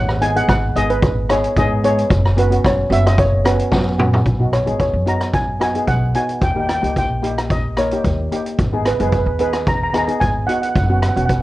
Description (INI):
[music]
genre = calypso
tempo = 111 BPM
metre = 4/4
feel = straight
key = B major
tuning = A4 = 441 Hz
[part]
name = steel pan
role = melody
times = 0.0-11.4 s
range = B4 to A#5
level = -20 LUFS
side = right 1 dB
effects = plate reverb
[part]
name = upright bass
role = bass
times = 0.0-11.4 s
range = E1 to G#2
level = -20 LUFS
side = equal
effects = none
[part]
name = street-band drum kit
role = drums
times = 0.1-11.4 s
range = hi-hat, kick drum, rim click, snare drum, toms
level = -20 LUFS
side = equal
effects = none
[part]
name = steel pan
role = accompaniment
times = 0.2-11.4 s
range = A#3 to A#4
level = -22 LUFS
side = left 1 dB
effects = plate reverb
[sound]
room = light reverb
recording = worn, warbling old tape, cassette tape, warbly pitch drift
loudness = -15 LUFS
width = side -16 dB against mid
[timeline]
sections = 0.0-4.3 A section; 4.3-11.4 B section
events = steel pan solo 0.0-4.3; drum fill 3.7-4.3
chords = 0.0 G#m; 2.1 F#sus4; 4.3 B; 6.4 D#7; 8.6 G#m7; 10.8 F#7sus4